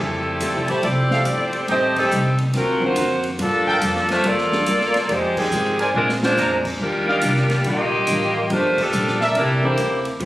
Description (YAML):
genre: jazz, big band swing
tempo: 141 BPM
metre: 4/4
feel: swing 65% on 8ths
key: F major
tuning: A4 = 440 Hz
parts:
  - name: bright saxophone section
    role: melody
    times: 0.0-10.0 s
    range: Eb3 to Eb5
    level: -20 LUFS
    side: equal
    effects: plate reverb
  - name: vintage hollow-body jazz guitar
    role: accompaniment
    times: 0.0-10.3 s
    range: G2 to A4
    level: -27 LUFS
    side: left 1 dB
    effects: none
  - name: upright bass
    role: bass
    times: 0.0-10.3 s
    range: G1 to Bb2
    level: -26 LUFS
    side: equal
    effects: none
  - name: swinging big-band drum kit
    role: drums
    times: 0.4-10.3 s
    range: crash cymbal, hi-hat, kick drum, ride cymbal, snare drum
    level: -30 LUFS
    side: equal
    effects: none
  - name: warm baby grand piano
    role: accompaniment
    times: 1.1-10.3 s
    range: D3 to A#4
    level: -28 LUFS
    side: right 1 dB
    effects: none
  - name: warm trumpet section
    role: stabs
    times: 1.1-9.8 s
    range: G4 to Bb5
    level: -22 LUFS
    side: right 1 dB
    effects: none
room: wet club reverb, RT60 0.7 s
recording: recorded on a phone in the room, studio reverb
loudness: -17 LUFS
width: side -16 dB against mid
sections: 0.0-10.3 A section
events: band accent 1.9, 5.3, 8.7; drum fill 6.0-6.4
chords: 0.0 Fmaj9; 1.7 Am7b5; 2.5 D7alt; 3.4 Gm9; 5.1 Fm9; 6.0 Bb9; 6.8 Ebmaj9; 8.5 Gm7; 9.4 C13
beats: 0.41 0.84 1.26 | 1.69 2.12 2.54 2.97 | 3.40 3.82 4.25 4.67 | 5.10 5.53 5.95 6.38 | 6.80 7.23 7.65 8.08 | 8.51 8.93 9.36 9.78 | 10.21